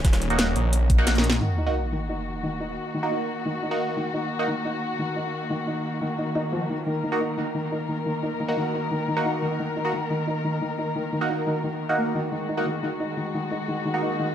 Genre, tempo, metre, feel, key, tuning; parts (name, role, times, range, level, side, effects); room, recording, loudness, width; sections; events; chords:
dark technical drum and bass; 176 BPM; 4/4; straight; Eb minor; A4 = 440 Hz
muted chamber string section; sustained chords; 0.0-14.3 s; Eb3 to Bb4; -29 LUFS; left 2 dB; sidechain pumping
phased detuned saw bass; bass; 0.0-1.4 s; Eb1 to Bb1; -23 LUFS; equal; phaser, overdrive
drum and bass drum kit; drums; 0.0-1.4 s; hi-hat, snare drum; -25 LUFS; equal
electronic kick drum; drums; 0.0-1.0 s; -19 LUFS; equal
jungle sampler-style drum kit; drums; 0.0-1.4 s; hi-hat, snare drum; -35 LUFS; right 1 dB; high-pass filter on hats, high-pass filter on snare, high-pass filter on room
band-passed chord stab; stabs; 0.3-4.5, 7.1-14.3 s; Bb3 to Gb4; -28 LUFS; right 2 dB; phaser, tape echo
felt-muted upright piano; arpeggios; 1.4-14.3 s; Eb3 to Eb4; -30 LUFS; equal; sidechain pumping, tape echo
sub drop; sound effects; 1.4-2.8 s; -28 LUFS; equal
moderate plate reverb, RT60 1.2 s; -23 LUFS; side -10 dB against mid
0.0-1.4 A section; 1.4-14.3 B section
drop 0.0-1.4; drum fill 1.1-1.4; band accent 1.3; impact 1.4-2.8
0.0 Ebm